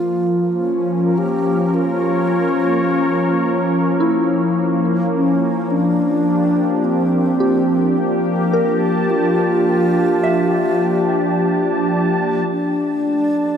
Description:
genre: ambient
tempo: 53 BPM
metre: 3/4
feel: straight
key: unclear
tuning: A4 = 438 Hz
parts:
  - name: mellow hollow alto flute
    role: melody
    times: 0.0-13.6 s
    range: Bb3 to G4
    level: -20 LUFS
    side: equal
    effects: tape echo
  - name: warm analog pad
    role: sustained chords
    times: 0.0-13.6 s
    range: F3 to A5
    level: -17 LUFS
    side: equal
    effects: chorus
  - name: soft synth bell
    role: arpeggios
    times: 0.0-13.6 s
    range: E4 to F5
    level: -23 LUFS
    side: equal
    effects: chorus, phaser, tape echo
room: wet cathedral reverb, RT60 5.3 s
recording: none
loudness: -15 LUFS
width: side -8 dB against mid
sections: 0.0-12.5 A section; 12.5-13.6 B section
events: none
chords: 0.0 Bbm; 5.7 Gm9; 12.5 Dmadd9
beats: 0.04 1.17 | 2.31 3.44 4.57 | 5.70 6.83 7.97 | 9.10 10.23 11.36 | 12.49

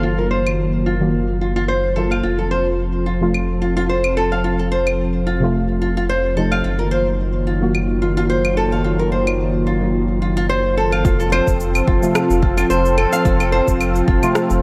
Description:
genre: organic downtempo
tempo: 109 BPM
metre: 4/4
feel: swing 54% on 16ths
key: unclear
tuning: A4 = 442 Hz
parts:
  - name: warm analog pad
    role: sustained chords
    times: 0.0-14.6 s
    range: Eb3 to A4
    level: -24 LUFS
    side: equal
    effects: subtle chorus, sidechain pumping, shimmer reverb
  - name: flamenco guitar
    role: arpeggios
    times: 0.0-14.6 s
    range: F4 to F5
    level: -23 LUFS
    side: equal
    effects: low-pass filter, digital delay, shimmer reverb
  - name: warm sub bass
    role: bass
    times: 0.0-14.6 s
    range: F1 to Gb1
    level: -24 LUFS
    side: equal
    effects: tube saturation, sidechain pumping
  - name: electronic claves, cabasa and rim click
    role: drums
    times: 0.5-14.6 s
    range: none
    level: -27 LUFS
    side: equal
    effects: overdrive, studio reverb
  - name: deep mellow chord stab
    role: accompaniment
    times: 1.0-14.6 s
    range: C3 to Gb4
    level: -25 LUFS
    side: equal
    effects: chorus, sidechain pumping, digital delay, shimmer reverb
  - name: electronic kick drum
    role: drums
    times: 11.0-14.2 s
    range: none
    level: -21 LUFS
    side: equal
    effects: overdrive, studio reverb
room: moderate lush hall reverb, RT60 1.7 s, digital ambience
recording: dark, warm production, faint mains hum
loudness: -18 LUFS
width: mono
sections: 0.0-11.0 A section; 11.0-14.6 B section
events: filter sweep on analog synth pad 0.0-11.0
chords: 0.0 Ebm/Gb; 2.2 F; 6.6 Ebm/Gb; 11.0 F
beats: | 0.04 0.59 1.14 1.69 | 2.24 2.79 3.34 3.89 | 4.44 4.99 5.54 6.09 | 6.65 7.20 7.75 8.30 | 8.85 9.40 9.95 10.50 | 11.05 11.60 12.15 12.70 | 13.25 13.80 14.35

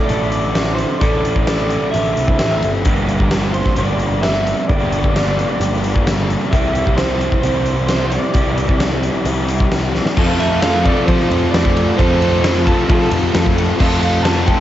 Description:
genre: rock, shoegaze and dream pop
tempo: 131 BPM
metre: 4/4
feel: straight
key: unclear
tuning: A4 = 439 Hz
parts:
  - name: electric guitar through a small old amp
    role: melody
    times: 0.0-14.6 s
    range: A4 to A5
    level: -22 LUFS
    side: right 2 dB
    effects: spring reverb, cassette tape, analog delay
  - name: raw garage guitar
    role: riff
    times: 0.0-14.6 s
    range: G2 to A4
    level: -22 LUFS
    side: left 7 dB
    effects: overdrive, wide subtle chorus, cassette tape
  - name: raw garage guitar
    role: riff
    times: 0.0-14.6 s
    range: G2 to A4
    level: -23 LUFS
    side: right 7 dB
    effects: overdrive, reverse reverb, cassette tape
  - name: fuzz picked electric bass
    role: bass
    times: 0.1-14.5 s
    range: G1 to F3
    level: -20 LUFS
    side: equal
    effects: overdrive
  - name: huge arena drum kit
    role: drums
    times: 0.1-14.6 s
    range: crash cymbal, hi-hat, kick drum, ride cymbal, snare drum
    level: -18 LUFS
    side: equal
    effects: none
  - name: overdriven electric guitar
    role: riff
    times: 10.2-14.6 s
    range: F3 to A4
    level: -20 LUFS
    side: left 2 dB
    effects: cassette tape
room: light reverb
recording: home recording on cassette, nothing above 7.8 kHz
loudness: -14 LUFS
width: side -12 dB against mid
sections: 0.0-10.2 A section; 10.2-14.6 B section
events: drum fill 9.9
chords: 0.0 Asus4; 2.8 Gm; 6.5 Cadd9; 10.2 F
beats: 0.09 0.55 | 1.01 1.47 1.93 2.39 | 2.85 3.31 3.77 4.22 | 4.68 5.14 5.60 6.06 | 6.52 6.97 7.43 7.89 | 8.34 8.80 9.26 9.71 | 10.17 10.62 11.07 11.53 | 11.98 12.43 12.89 13.34 | 13.79 14.24

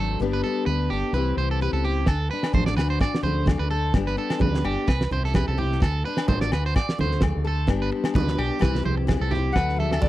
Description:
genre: highlife guitar band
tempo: 128 BPM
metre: 4/4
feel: swing 54% on 16ths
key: D mixolydian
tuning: A4 = 440 Hz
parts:
  - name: picked steel-string acoustic guitar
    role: accompaniment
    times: 0.0-10.1 s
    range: G2 to A4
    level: -29 LUFS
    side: left 6 dB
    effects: none
  - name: electric guitar at the edge of break-up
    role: arpeggios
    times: 0.0-10.1 s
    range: G4 to D5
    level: -29 LUFS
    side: right 4 dB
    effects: tape echo
  - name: fingered electric bass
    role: bass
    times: 0.0-10.1 s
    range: G1 to D2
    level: -25 LUFS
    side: equal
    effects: none
  - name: damped 70s drum kit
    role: drums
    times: 2.1-10.1 s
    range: kick drum, snare drum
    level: -23 LUFS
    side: equal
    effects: none
  - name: agogo bells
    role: percussion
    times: 2.1-10.0 s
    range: none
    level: -36 LUFS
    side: left 7 dB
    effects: none
  - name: congas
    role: percussion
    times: 2.1-10.1 s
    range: none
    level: -30 LUFS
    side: right 4 dB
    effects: none
  - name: breathy clarinet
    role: melody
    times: 9.5-10.1 s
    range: D5 to F#5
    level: -26 LUFS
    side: left 4 dB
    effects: none
room: little or no reverb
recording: dry, close 1970s-style studio recording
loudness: -21 LUFS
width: side -15 dB against mid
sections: 0.0-9.6 A section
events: none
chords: 0.2 G; 1.1 C; 2.1 D; 3.9 G; 4.9 C; 5.8 D; 7.7 G; 8.6 C; 9.6 D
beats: | 0.20 0.67 1.14 1.60 | 2.07 2.54 3.01 3.47 | 3.94 4.41 4.88 5.34 | 5.81 6.28 6.75 7.22 | 7.68 8.15 8.62 9.09 | 9.56 10.03

